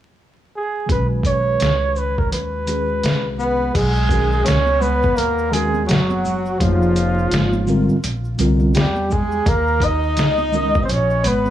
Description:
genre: hip hop, jazz-hop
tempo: 84 BPM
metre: 4/4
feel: swing 60% on 16ths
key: B major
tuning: A4 = 440 Hz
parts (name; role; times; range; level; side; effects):
- breathy flugelhorn; melody; 0.6-11.5 s; F4 to D#5; -21 LUFS; right 1 dB; analog delay
- mellow tine electric piano; accompaniment; 0.9-10.8 s; D3 to C#5; -22 LUFS; equal; medium stereo tremolo
- upright bass; bass; 0.9-11.5 s; F1 to E2; -21 LUFS; equal; none
- lo-fi sampler-style drum kit; drums; 0.9-11.4 s; crash cymbal, hi-hat, kick drum, shaker, snare drum; -21 LUFS; equal; overdrive
- breathy tenor saxophone; second line; 3.4-11.5 s; F3 to D#4; -23 LUFS; left 2 dB; none
- egg shaker and congas; percussion; 3.8-11.5 s; none; -30 LUFS; right 4 dB; none
room: light reverb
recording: vinyl crackle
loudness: -16 LUFS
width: side -12 dB against mid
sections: 0.9-3.7 A section; 3.7-11.5 B section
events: none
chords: 0.0 N.C.; 0.9 B6; 6.6 Fm7; 8.0 A#; 9.5 D#m7

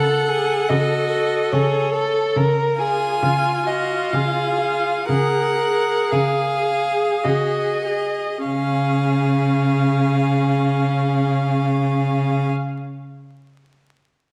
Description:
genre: classical, slow romantic movement for string quartet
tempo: 47-73 BPM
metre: 3/4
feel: rubato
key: Db major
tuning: A4 = 439 Hz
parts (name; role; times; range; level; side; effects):
- clear violin; melody; 0.0-12.5 s; Db5 to Ab5; -27 LUFS; equal; none
- clear violin; second line; 0.0-12.5 s; F4 to Bb4; -27 LUFS; equal; none
- rich viola; accompaniment; 0.0-12.5 s; Db4 to A4; -25 LUFS; equal; none
- clear cello; bass; 0.0-12.5 s; Db3; -24 LUFS; equal; none
room: moderate scoring stage reverb, RT60 1.5 s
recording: dark, warm production, vinyl crackle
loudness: -20 LUFS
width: mono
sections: 0.0-8.5 A section; 8.5-12.1 B section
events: slowing down 1.1-8.5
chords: 0.0 Gbm/Db; 2.4 Db

